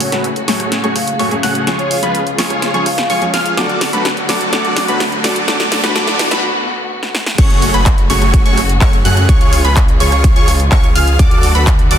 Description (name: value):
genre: EDM, festival progressive house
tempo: 126 BPM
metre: 4/4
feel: straight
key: F# harmonic minor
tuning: A4 = 440 Hz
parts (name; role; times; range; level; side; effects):
- vibraphone with soft mallets; melody; 0.0-3.1 s; C#5 to E#5; -22 LUFS; equal; ping-pong delay
- warm symphonic string section; sustained chords; 0.0-12.0 s; C#3 to G#4; -24 LUFS; equal; sidechain pumping
- plucky unison lead; arpeggios; 0.0-12.0 s; B5 to F#6; -21 LUFS; equal; sidechain pumping, ping-pong delay
- dense compressed supersaw; riff; 0.0-12.0 s; A3 to F#5; -18 LUFS; equal; sidechain pumping, low-pass filter, ping-pong delay
- detuned saw bass; bass; 0.0-12.0 s; F#1 to F#2; -19 LUFS; equal; sidechain pumping, high-pass filter
- big-room dance drum kit; drums; 0.0-12.0 s; crash cymbal, handclaps, hi-hat, rim click, snare drum; -19 LUFS; equal; small room reverb
- riser; sound effects; 2.9-6.4 s; none; -25 LUFS; equal; none
- warm grand piano; accompaniment; 0.1-6.4 s; E#3 to A4; -22 LUFS; left 1 dB; sidechain pumping, ping-pong delay
- electronic kick drum; drums; 7.4-11.8 s; none; -11 LUFS; equal; small room reverb
room: moderate lush hall reverb, RT60 1.6 s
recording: dense, heavily limited modern master, high-pass filter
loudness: -11 LUFS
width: side -10 dB against mid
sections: 0.0-7.4 A section; 7.4-12.0 B section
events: build-up 0.0-7.4; drum fill 0.0-6.4, 7.0-7.4; filter sweep on supersaw synth 0.0-7.4; filter sweep 0.0-7.4; break 6.4-7.4; drop 7.4-12.0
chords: 0.0 F#madd9; 1.7 C#; 3.6 Bm7/D; 7.4 F#madd9; 9.3 C#; 11.2 D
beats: 0.24 0.72 1.19 | 1.67 2.15 2.62 3.10 | 3.58 4.05 4.53 5.00 | 5.48 5.96 6.43 6.91 | 7.38 7.86 8.34 8.81 | 9.29 9.77 10.24 10.72 | 11.19 11.67